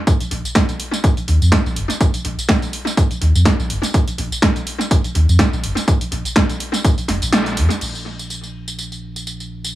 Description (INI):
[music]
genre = deep house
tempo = 124 BPM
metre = 4/4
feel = swing 55% on 16ths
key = unclear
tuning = A4 = 440 Hz
[part]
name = electronic kick drum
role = drums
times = 0.1-7.0 s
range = none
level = -17 LUFS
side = equal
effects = none
[part]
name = punchy analog drum machine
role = drums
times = 0.1-9.7 s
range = crash cymbal, hi-hat, snare drum, tambourine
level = -20 LUFS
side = right 1 dB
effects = analog delay
[part]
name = sub bass with octave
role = bass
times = 0.3-9.8 s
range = F1 to F2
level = -18 LUFS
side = equal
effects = sidechain pumping
[sound]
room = moderate spring reverb, RT60 1.7 s, digital ambience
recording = echo-heavy mix, small room ambience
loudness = -15 LUFS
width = side -14 dB against mid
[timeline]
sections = 0.0-7.8 A section; 7.8-9.8 B section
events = kick drops out 7.3-7.8; band accent 7.3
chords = none